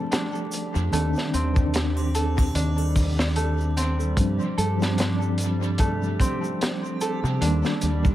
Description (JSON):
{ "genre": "trip hop", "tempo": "74 BPM", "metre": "4/4", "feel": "swing 57% on 16ths", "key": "unclear", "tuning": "A4 = 440 Hz", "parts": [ { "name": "mellow tine electric piano", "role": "accompaniment", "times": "0.0-8.1 s", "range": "Eb3 to D4", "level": "-28 LUFS", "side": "equal", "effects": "medium stereo tremolo, dub echo" }, { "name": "concert harp", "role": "arpeggios", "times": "0.0-8.1 s", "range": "A3 to A4", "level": "-30 LUFS", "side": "right 1 dB", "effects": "vintage 12-bit sampler grit, dub echo" }, { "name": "backwards swelling texture", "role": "texture", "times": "0.0-8.1 s", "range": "G3 to G4", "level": "-38 LUFS", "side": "right 1 dB", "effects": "built-in reverb" }, { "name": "crunchy breakbeat drum kit", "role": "drums", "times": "0.1-8.1 s", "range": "hi-hat, kick drum, snare drum", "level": "-27 LUFS", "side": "equal", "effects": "dub echo" }, { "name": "tube shaker and triangle", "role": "percussion", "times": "0.1-8.1 s", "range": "none", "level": "-41 LUFS", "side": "right 1 dB", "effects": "dub echo" }, { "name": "deep dub fingered electric bass", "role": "bass", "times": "0.8-8.1 s", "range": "Eb2 to C3", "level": "-24 LUFS", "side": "equal", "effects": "none" } ], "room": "small room ambience", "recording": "echo-heavy mix, vinyl crackle", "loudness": "-21 LUFS", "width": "side -13 dB against mid", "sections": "0.0-8.1 A section", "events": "none", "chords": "0.0 Dm7; 0.9 Cmadd9/Eb; 4.2 G7sus4; 7.4 Ebmaj7" }